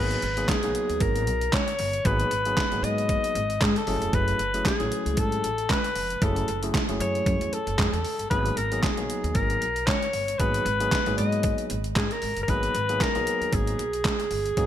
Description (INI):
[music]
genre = early-eighties boogie funk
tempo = 115 BPM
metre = 4/4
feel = swing 56% on 16ths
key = unclear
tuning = A4 = 441 Hz
[part]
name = breathy alto saxophone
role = melody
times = 0.0-14.7 s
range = G#4 to D#5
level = -27 LUFS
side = left 2 dB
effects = digital delay
[part]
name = overdriven tine electric piano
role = accompaniment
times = 0.0-14.7 s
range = F#3 to G#4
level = -32 LUFS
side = equal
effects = none
[part]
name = upright bass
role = bass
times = 0.0-14.7 s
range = E#1 to G#2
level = -29 LUFS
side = equal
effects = none
[part]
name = detuned 8-bit digital drum machine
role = drums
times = 0.1-14.7 s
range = handclaps, hi-hat, kick drum, snare drum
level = -27 LUFS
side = right 1 dB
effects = overdrive, gated reverb
[sound]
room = light reverb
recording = bright 1980s-style digital production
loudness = -23 LUFS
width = side -11 dB against mid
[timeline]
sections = 0.0-14.7 A section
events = none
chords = 0.0 G#m9; 3.9 F#m9; 8.3 G#m9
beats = 0.48 1.01 1.53 | 2.05 2.57 3.09 3.62 | 4.14 4.66 5.18 5.70 | 6.22 6.75 7.27 7.79 | 8.31 8.83 9.35 9.88 | 10.40 10.92 11.44 11.96 | 12.48 13.01 13.53 14.05 | 14.57